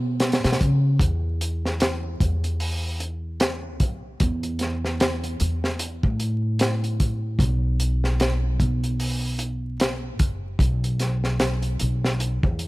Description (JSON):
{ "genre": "trip hop", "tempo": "75 BPM", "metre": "4/4", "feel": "swing 60% on 16ths", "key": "unclear", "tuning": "A4 = 440 Hz", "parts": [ { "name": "upright bass", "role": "bass", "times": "0.0-12.7 s", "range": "F#1 to C#3", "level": "-24 LUFS", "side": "equal", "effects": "tube saturation" }, { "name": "crunchy breakbeat drum kit", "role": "drums", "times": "0.2-12.7 s", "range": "hi-hat, kick drum, snare drum", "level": "-24 LUFS", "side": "equal", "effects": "none" } ], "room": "little or no reverb", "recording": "vinyl crackle", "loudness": "-21 LUFS", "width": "side -20 dB against mid", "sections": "0.0-12.7 A section", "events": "none", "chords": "none" }